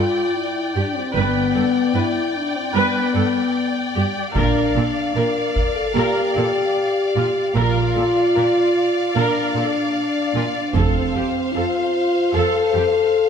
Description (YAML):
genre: cinematic, epic orchestral film score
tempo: 75 BPM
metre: 4/4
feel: straight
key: unclear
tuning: A4 = 441 Hz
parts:
  - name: warm symphonic violin section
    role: melody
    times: 0.0-13.3 s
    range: F5 to G5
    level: -27 LUFS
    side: left 2 dB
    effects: none
  - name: rich symphonic violin section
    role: second line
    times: 0.0-13.3 s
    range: C5 to D5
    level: -27 LUFS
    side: left 3 dB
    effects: none
  - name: rich symphonic viola section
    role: accompaniment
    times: 0.0-12.8 s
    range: F4 to B4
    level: -26 LUFS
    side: right 2 dB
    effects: none
  - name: mellow French horn section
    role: sustained chords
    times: 0.0-13.3 s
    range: B3 to Bb4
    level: -20 LUFS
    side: left 2 dB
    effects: none
  - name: clear symphonic cello section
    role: bass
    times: 0.0-12.8 s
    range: F2 to Bb2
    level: -25 LUFS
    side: right 4 dB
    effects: none
  - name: rich symphonic double bass section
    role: bass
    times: 1.2-11.1 s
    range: F1 to Bb1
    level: -24 LUFS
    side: right 5 dB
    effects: none
  - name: taiko ensemble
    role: drums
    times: 4.4-5.9, 10.7-12.3 s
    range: none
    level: -25 LUFS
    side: equal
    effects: none
room: wet scoring stage reverb, RT60 1.9 s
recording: none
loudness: -17 LUFS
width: side -7 dB against mid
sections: 0.0-13.3 A section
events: none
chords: 0.0 G; 4.4 Bb; 10.8 F